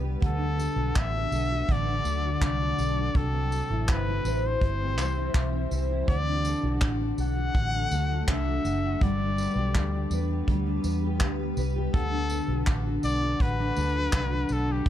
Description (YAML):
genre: acoustic pop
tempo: 82 BPM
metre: 4/4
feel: straight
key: D mixolydian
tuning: A4 = 440 Hz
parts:
  - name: fingerpicked steel-string acoustic guitar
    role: accompaniment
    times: 0.0-14.9 s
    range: C3 to C5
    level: -30 LUFS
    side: left 1 dB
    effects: double-tracked left and right
  - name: granular cloud pad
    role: sustained chords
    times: 0.0-14.9 s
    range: D3 to B4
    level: -38 LUFS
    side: equal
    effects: built-in reverb
  - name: vintage muted fingered electric bass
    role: bass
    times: 0.0-14.9 s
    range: F#1 to E2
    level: -29 LUFS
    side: equal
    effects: none
  - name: soft brush drum kit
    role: drums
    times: 0.2-14.9 s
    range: handclaps, kick drum, tambourine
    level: -27 LUFS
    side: equal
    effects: none
  - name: clear trumpet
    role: melody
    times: 0.3-14.9 s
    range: G4 to F#5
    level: -32 LUFS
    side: left 2 dB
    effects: plate reverb, ping-pong delay
room: light reverb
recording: dark, warm production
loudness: -24 LUFS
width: side -11 dB against mid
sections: 0.0-14.9 A section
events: none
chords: 0.2 D; 3.2 C; 6.1 D; 9.0 G; 11.9 D